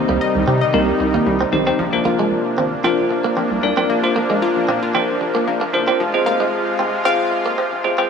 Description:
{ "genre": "pop", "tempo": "114 BPM", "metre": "4/4", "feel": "straight", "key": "F dorian", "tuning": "A4 = 438 Hz", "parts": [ { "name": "bell-like tine electric piano", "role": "accompaniment", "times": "0.0-8.1 s", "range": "C4 to D5", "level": "-20 LUFS", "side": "equal", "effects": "medium stereo tremolo" }, { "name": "soft supersaw", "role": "sustained chords", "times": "0.0-8.1 s", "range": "C3 to F4", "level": "-21 LUFS", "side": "equal", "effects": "none" }, { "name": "analog pluck", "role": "arpeggios", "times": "0.0-7.7 s", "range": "Eb3 to F5", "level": "-23 LUFS", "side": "left 5 dB", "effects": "chorus, tape echo" }, { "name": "direct-recorded clean electric guitar", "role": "riff", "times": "0.0-8.1 s", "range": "Ab3 to C4", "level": "-24 LUFS", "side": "right 4 dB", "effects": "lush chorus" }, { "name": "round analog bass", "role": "bass", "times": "0.1-8.1 s", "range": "F1 to C3", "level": "-25 LUFS", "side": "right 1 dB", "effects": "none" } ], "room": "moderate lush hall reverb, RT60 2.3 s", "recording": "high-pass filter, small room ambience", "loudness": "-15 LUFS", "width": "side -6 dB against mid", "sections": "0.0-8.1 A section", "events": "build-up 0.0-8.1; filter sweep 0.0-8.1", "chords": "0.0 Cm; 1.8 Bbadd9; 6.0 Fm" }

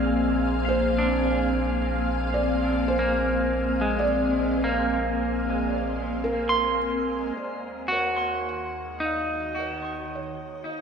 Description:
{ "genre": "ambient", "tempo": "54 BPM", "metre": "3/4", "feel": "straight", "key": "unclear", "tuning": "A4 = 440 Hz", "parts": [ { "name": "felt-muted upright piano", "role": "melody", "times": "0.0-10.8 s", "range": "Bb4 to Gb5", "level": "-30 LUFS", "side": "equal", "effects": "shimmer reverb, analog delay" }, { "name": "evolving wavetable pad", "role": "sustained chords", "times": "0.0-10.8 s", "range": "Db3 to F5", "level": "-28 LUFS", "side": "left 1 dB", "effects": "ensemble chorus, built-in reverb, phaser, shimmer reverb" }, { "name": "clean electric guitar", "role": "arpeggios", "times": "0.0-10.8 s", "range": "Ab3 to C6", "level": "-28 LUFS", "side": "right 1 dB", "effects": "shimmer reverb, analog delay" }, { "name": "warm sub bass", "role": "bass", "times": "0.0-10.8 s", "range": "Bb1 to Eb2", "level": "-32 LUFS", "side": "equal", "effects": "none" }, { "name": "wind-like tuned noise texture", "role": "texture", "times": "0.0-7.4 s", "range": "Ab5 to F6", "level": "-36 LUFS", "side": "left 2 dB", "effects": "built-in reverb, shimmer reverb" } ], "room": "wet echo chamber reverb, RT60 2.2 s", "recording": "echo-heavy mix", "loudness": "-23 LUFS", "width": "side -6 dB against mid", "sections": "0.0-7.4 A section; 7.4-10.8 B section", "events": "none", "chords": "0.0 Bb7; 7.4 Ebm7" }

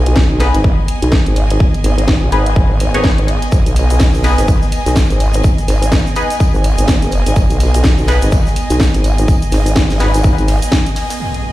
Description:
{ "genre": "bass house", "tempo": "125 BPM", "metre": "4/4", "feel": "swing 59% on 16ths", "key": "G# minor", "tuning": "A4 = 438 Hz", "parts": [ { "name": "vowel-sweep wobble bass", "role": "bass", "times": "0.0-10.6 s", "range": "F#1 to B1", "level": "-14 LUFS", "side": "equal", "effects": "chorus, sidechain pumping" }, { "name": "clear studio string section", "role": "texture", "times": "0.0-11.5 s", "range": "B3 to G#5", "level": "-22 LUFS", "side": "equal", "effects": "sidechain pumping" }, { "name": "garage drum kit", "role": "drums", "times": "0.1-11.4 s", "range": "hi-hat, snare drum", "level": "-20 LUFS", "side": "equal", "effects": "none" }, { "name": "electronic kick drum", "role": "drums", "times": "0.2-10.8 s", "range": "none", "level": "-13 LUFS", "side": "equal", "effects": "overdrive" }, { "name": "band-passed chord stab", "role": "stabs", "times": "0.4-10.1 s", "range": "B3 to C#5", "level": "-21 LUFS", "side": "left 2 dB", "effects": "chorus, phaser, sidechain pumping, ping-pong delay" }, { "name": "big rock drum kit", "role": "drums", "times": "3.5-11.2 s", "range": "hi-hat, snare drum, tambourine", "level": "-31 LUFS", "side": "right 3 dB", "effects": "sidechain pumping on hats, high-pass filter on hats, high-pass filter on snare, sidechain pumping on perc, high-pass filter on perc, high-pass filter on room" }, { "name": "tube shaker", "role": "percussion", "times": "3.5-11.2 s", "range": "none", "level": "-31 LUFS", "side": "right 2 dB", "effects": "none" }, { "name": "deep dark ambient pad", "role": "sustained chords", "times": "11.2-11.5 s", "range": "none", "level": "barely audible", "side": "none", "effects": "none" }, { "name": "impact", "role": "sound effects", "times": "11.2-11.5 s", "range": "none", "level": "-20 LUFS", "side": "equal", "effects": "none" } ], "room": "small room ambience", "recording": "played on a big sound system in a bare room, stone room reverb", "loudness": "-11 LUFS", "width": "side -16 dB against mid", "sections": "0.0-11.2 A section", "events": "impact 11.2-11.5", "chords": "0.0 G#m" }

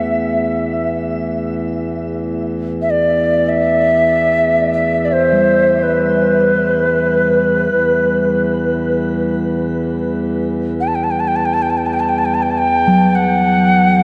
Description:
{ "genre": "world meditative, free-time meditation music", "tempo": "free time", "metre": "none", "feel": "none", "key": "E minor", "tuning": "A4 = 440 Hz", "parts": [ { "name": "mellow reedy Native American-style cedar flute", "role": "melody", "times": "0.0-14.0 s", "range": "B4 to A5", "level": "-17 LUFS", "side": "equal", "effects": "shimmer reverb, diffuse ambient delay" }, { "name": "pedal harmonium", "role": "drone", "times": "0.0-14.0 s", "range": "E2", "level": "-22 LUFS", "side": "equal", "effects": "none" }, { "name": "bronze singing bowl", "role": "texture", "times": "0.0-14.0 s", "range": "F#3 to A3", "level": "-24 LUFS", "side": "equal", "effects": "none" } ], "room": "wet huge ambient reverb, RT60 9.3 s", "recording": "in a vast, echoing space, cassette tape", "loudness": "-16 LUFS", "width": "mono", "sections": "0.0-14.0 A section", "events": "none", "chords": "none" }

